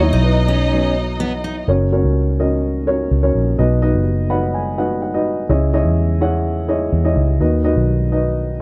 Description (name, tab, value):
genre	pop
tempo	126 BPM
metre	4/4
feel	straight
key	B major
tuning	A4 = 438 Hz
part	warm studio violin section	second line	0.0-1.6 s	D#4 to D#5	-25 LUFS	equal	none
part	dark upright piano	accompaniment	0.0-8.6 s	B2 to B5	-21 LUFS	equal	none
part	vintage muted fingered electric bass	bass	0.0-8.6 s	F#1 to E2	-20 LUFS	equal	none
part	picked steel-string acoustic guitar	riff	0.1-1.6 s	B3 to D#4	-26 LUFS	equal	none
room	light reverb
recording	dry, close 1970s-style studio recording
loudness	-17 LUFS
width	mono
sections	0.0-1.7 A section; 1.7-8.6 B section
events	upright piano solo 0.0-1.7; upright piano fill 4.1-5.5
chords	0.0 B; 1.7 F#; 3.6 B; 5.5 C#madd9; 7.4 B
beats	0.25 0.73 1.21 | 1.68 2.16 2.63 3.11 | 3.59 4.07 4.54 5.02 | 5.50 5.97 6.45 6.93 | 7.40 7.88 8.36